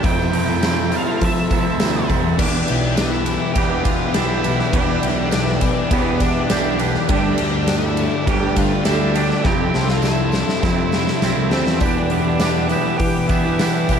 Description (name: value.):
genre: rock, shoegaze and dream pop.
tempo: 102 BPM.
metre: 4/4.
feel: straight.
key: E phrygian.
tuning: A4 = 441 Hz.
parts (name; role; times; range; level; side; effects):
octave-fuzz lead guitar; melody; 0.0-14.0 s; B3 to G5; -26 LUFS; equal; distortion, tape echo.
warm analog pad; sustained chords; 0.0-14.0 s; A4 to D6; -29 LUFS; left 2 dB; chorus.
twangy electric guitar; arpeggios; 0.0-14.0 s; E3 to G4; -31 LUFS; left 12 dB; analog chorus, tape echo.
thick fuzz guitar; riff; 0.0-14.0 s; E2 to G3; -24 LUFS; left 10 dB; distortion, ensemble chorus.
twangy electric guitar; riff; 0.0-14.0 s; E3 to G4; -23 LUFS; right 12 dB; reverse reverb.
fuzz picked electric bass; bass; 0.0-13.9 s; B1 to F3; -23 LUFS; equal; overdrive.
huge arena drum kit; drums; 0.0-14.0 s; crash cymbal, hi-hat, kick drum, ride cymbal, snare drum; -21 LUFS; equal; none.
tambourine; percussion; 0.0-14.0 s; none; -40 LUFS; right 18 dB; none.
room: light reverb, studio ambience.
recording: none.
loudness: -16 LUFS.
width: side -7 dB against mid.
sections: 0.0-2.4 A section; 2.4-11.8 B section; 11.8-14.0 A section.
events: drum fill 9.5-11.8.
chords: 0.0 Fmaj7; 2.4 Em7; 7.1 Gsus2; 9.5 Fmaj7; 11.8 Em7.